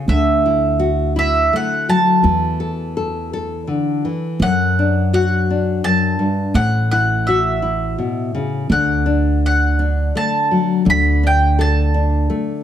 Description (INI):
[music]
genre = folk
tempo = 84 BPM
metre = 3/4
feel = straight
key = D major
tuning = A4 = 441 Hz
[part]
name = nylon-string guitar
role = accompaniment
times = 0.0-12.6 s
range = F#2 to A4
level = -19 LUFS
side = left 4 dB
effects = none
[part]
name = mandolin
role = melody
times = 0.1-12.6 s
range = E5 to B5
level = -19 LUFS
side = right 2 dB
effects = none
[part]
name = upright bass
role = bass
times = 0.1-12.3 s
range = A1 to F#2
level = -18 LUFS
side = right 1 dB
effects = none
[sound]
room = light reverb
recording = none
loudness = -15 LUFS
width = side -10 dB against mid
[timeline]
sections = 0.1-12.6 A section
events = none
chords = 0.1 Dadd9; 2.2 Asus4/E; 4.4 D/F#; 6.6 A6; 8.7 D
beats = | 0.08 0.80 1.52 | 2.24 2.96 3.68 | 4.39 5.11 5.83 | 6.55 7.27 7.99 | 8.71 9.43 10.14 | 10.86 11.58 12.30